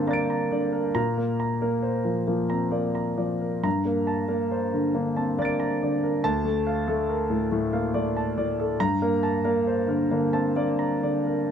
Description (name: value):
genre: neoclassical minimalist piano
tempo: 41-47 BPM (dotted quarters)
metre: 6/8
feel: rubato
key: G minor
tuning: A4 = 440 Hz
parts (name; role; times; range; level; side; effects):
- warm grand piano; solo; 0.0-11.5 s; D2 to D7; -23 LUFS; equal; none
room: light reverb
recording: close, detailed microphones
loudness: -23 LUFS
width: side -8 dB against mid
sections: 0.0-11.5 A section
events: none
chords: 0.0 Gmadd9; 1.0 Bb; 3.7 Gmadd9; 6.2 Dm; 8.8 Gmadd9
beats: | 0.96 2.29 | 3.65 4.96 | 6.25 7.51 | 8.79 10.11 | 11.51